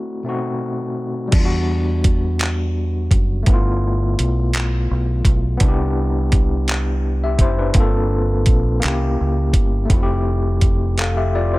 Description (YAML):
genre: slow six-eight R&B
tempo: 56 BPM (dotted quarters)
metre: 6/8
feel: straight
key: E minor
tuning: A4 = 441 Hz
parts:
  - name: overdriven tine electric piano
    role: accompaniment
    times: 0.0-11.6 s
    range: B2 to F5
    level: -22 LUFS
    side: left 2 dB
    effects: fast tremolo
  - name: deep dub fingered electric bass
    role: bass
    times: 1.3-11.6 s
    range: F1 to E2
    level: -19 LUFS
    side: equal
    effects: none
  - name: dusty soul sampler-style drum kit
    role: drums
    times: 1.3-11.2 s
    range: crash cymbal, handclaps, hi-hat, kick drum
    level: -17 LUFS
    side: equal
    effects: none
room: little or no reverb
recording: none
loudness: -16 LUFS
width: side -20 dB against mid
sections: 0.0-1.3 A section; 1.3-11.6 B section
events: break 0.0-1.3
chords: 0.3 B7b9; 1.3 Em9; 3.5 G13; 5.6 Cmaj7; 7.8 Gm11; 8.8 C7b9; 9.9 Fmaj7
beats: 0.25 | 1.32 2.40 | 3.47 4.54 | 5.61 6.68 | 7.75 8.82 | 9.90 10.97